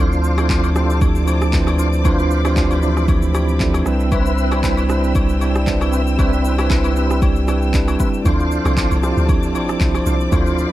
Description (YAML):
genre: amapiano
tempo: 116 BPM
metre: 4/4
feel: swing 55% on 16ths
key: D dorian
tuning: A4 = 442 Hz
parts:
  - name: bell-like tine electric piano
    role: accompaniment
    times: 0.0-10.7 s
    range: E3 to D5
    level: -20 LUFS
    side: right 2 dB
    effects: medium stereo tremolo
  - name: rich studio string section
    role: sustained chords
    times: 0.0-10.7 s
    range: C4 to E6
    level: -28 LUFS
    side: left 1 dB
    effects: none
  - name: tonewheel organ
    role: stabs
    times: 0.0-10.7 s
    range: C4 to C5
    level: -25 LUFS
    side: left 1 dB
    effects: chorus vibrato, slow rotary speaker, tape echo
  - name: saturated sub bass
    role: bass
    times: 0.0-8.0 s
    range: C2 to D2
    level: -18 LUFS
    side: equal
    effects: none
  - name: deep house drum kit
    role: drums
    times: 0.1-10.7 s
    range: handclaps, kick drum, rim click, shaker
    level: -19 LUFS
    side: equal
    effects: none
  - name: agogo bells and woodblock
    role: percussion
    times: 0.4-10.5 s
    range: none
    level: -32 LUFS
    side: left 7 dB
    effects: none
  - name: deep log drum bass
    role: bass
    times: 8.3-10.7 s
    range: A1 to D2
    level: -19 LUFS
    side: equal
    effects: none
room: light reverb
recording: dark, warm production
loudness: -14 LUFS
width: side -14 dB against mid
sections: 0.0-10.7 A section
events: none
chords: 0.0 Dm7; 3.9 Cmaj7; 8.3 Dm7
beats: 0.50 1.01 1.53 | 2.05 2.57 3.08 3.60 | 4.12 4.63 5.15 5.67 | 6.19 6.70 7.22 7.74 | 8.26 8.77 9.29 9.81 | 10.32